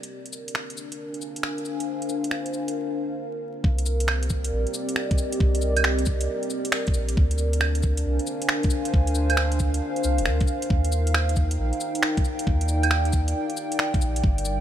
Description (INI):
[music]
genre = future garage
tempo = 136 BPM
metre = 4/4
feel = swing 66% on 16ths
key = C minor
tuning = A4 = 439 Hz
[part]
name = dark analog pad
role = sustained chords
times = 0.0-14.6 s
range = G3 to Ab5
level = -28 LUFS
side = equal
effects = chorus, sidechain pumping
[part]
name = garage drum kit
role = drums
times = 0.0-14.6 s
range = cabasa, claves, finger snaps, hi-hat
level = -27 LUFS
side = right 2 dB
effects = small room ambience
[part]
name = soft dub sub bass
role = bass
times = 3.6-14.6 s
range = D1 to Eb2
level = -24 LUFS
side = equal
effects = sidechain pumping
[part]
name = electronic kick drum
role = drums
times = 3.6-14.4 s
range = none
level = -22 LUFS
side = equal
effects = small room ambience
[sound]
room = light reverb, digital ambience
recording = vinyl crackle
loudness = -22 LUFS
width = side -11 dB against mid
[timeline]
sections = 0.0-3.6 A section; 3.6-14.6 B section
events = break 2.8-3.6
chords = 0.1 Bb7; 3.6 Cm7; 7.2 Bb7; 10.7 Ebmaj7